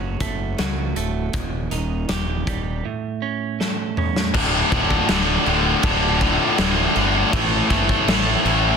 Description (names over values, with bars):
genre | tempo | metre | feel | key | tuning
quiet-loud alternative rock | 80 BPM | 4/4 | straight | D minor from 4.3 s | A4 = 440 Hz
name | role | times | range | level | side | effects
twelve-string electric guitar | arpeggios | 0.0-4.3 s | Eb2 to G4 | -27 LUFS | right 10 dB | none
fuzz fingered electric bass | bass | 0.0-8.7 s | D1 to C#2 | -25 LUFS | equal | overdrive
big rock drum kit | drums | 0.2-8.6 s | crash cymbal, hi-hat, kick drum, snare drum, toms | -23 LUFS | equal | soft clipping on kick
heavy high-gain guitar | riff | 4.3-8.8 s | D2 to A3 | -22 LUFS | right 15 dB | distortion
tight distorted guitar | riff | 4.3-8.8 s | D2 to A3 | -21 LUFS | left 15 dB | distortion
string machine, violas | sustained chords | 4.4-8.8 s | A3 to D5 | -31 LUFS | right 1 dB | ensemble chorus
room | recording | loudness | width
light reverb, small room ambience | dense, heavily limited modern master | -18 LUFS | side -6 dB against mid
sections
0.0-4.3 A section; 4.3-8.8 B section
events
drum fill 3.6-4.3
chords
0.0 F#m; 1.3 Eb; 2.8 A; 4.3 Dm; 7.3 Am